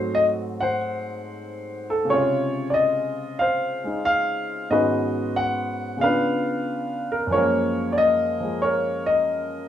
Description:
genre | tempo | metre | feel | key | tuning
solo jazz | 92 BPM | 4/4 | swing 69% on 8ths | unclear | A4 = 440 Hz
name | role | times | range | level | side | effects
warm baby grand piano | solo | 0.0-9.7 s | Gb2 to Gb5 | -21 LUFS | left 1 dB | none
room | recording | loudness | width
wet studio reverb, RT60 0.5 s | heard from further back in the room | -20 LUFS | side -10 dB against mid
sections
0.0-9.7 A section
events
none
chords
0.0 Ab7b9; 2.1 Dbmaj7; 4.7 Abm7; 6.0 Db7b9; 7.3 Gbmaj9

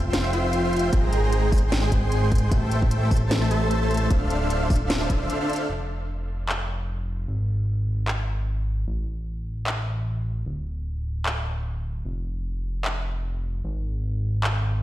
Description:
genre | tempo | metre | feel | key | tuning
future bass | 151 BPM | 4/4 | swing 55% on 16ths, half-time | unclear | A4 = 440 Hz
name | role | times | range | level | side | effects
dense compressed supersaw | riff | 0.0-5.7 s | Ab3 to C6 | -26 LUFS | equal | sidechain pumping, low-pass filter, dub echo
fat analog bass | bass | 0.0-14.8 s | D1 to A1 | -25 LUFS | equal | sidechain pumping
trap drum kit | drums | 0.1-14.5 s | handclaps, hi-hat, snare drum | -29 LUFS | equal | none
electronic kick drum | drums | 0.9-5.2 s | none | -21 LUFS | equal | none
room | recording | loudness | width
light reverb, digital ambience | played on a big sound system in a bare room, stone room reverb | -22 LUFS | side -14 dB against mid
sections
0.0-5.7 A section; 5.7-14.8 B section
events
drop 0.0-5.7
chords
0.0 Fmaj7(no3); 0.9 Abmaj9; 2.5 Am7; 4.1 Dm7; 5.7 N.C.

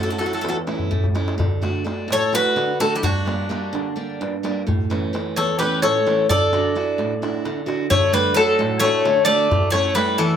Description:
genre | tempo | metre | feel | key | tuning
greek folk, Greek bouzouki band | 258 BPM (eighths) | 7/8 | straight | D major | A4 = 439 Hz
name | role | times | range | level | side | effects
Greek bouzouki | melody | 0.0-10.4 s | F#4 to D5 | -19 LUFS | left 1 dB | none
Greek bouzouki | second line | 0.0-10.4 s | E3 to A4 | -24 LUFS | left 1 dB | none
picked steel-string acoustic guitar | accompaniment | 0.0-10.4 s | E2 to F#4 | -24 LUFS | right 2 dB | none
darbuka | percussion | 0.2-10.4 s | none | -25 LUFS | equal | none
room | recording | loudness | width
moderate small room reverb, RT60 0.5 s | close, detailed microphones | -18 LUFS | side -8 dB against mid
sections
0.0-7.9 A section; 7.9-10.4 B section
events
speeding up 0.0-10.4; drum fill 0.8-1.4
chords
0.0 A; 1.4 D; 3.0 Gm; 4.7 A; 6.3 Dadd9; 7.9 D; 9.5 A

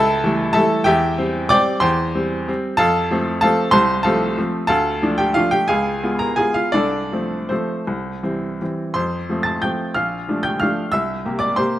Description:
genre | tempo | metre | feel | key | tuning
classical, piano waltz | 154-200 BPM | 3/4 | rubato | F major | A4 = 439 Hz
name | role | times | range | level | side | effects
clear upright piano | solo | 0.0-11.8 s | Bb1 to A6 | -17 LUFS | equal | none
room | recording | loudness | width
light reverb | close, detailed microphones | -17 LUFS | side -14 dB against mid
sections
0.0-9.0 A section; 9.0-11.8 B section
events
none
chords
0.0 A7/C#; 0.9 C/E; 2.8 F; 4.7 Dm; 5.7 Db7; 6.7 F/C; 7.9 C; 9.0 F; 10.0 Bbmaj7; 10.9 C7

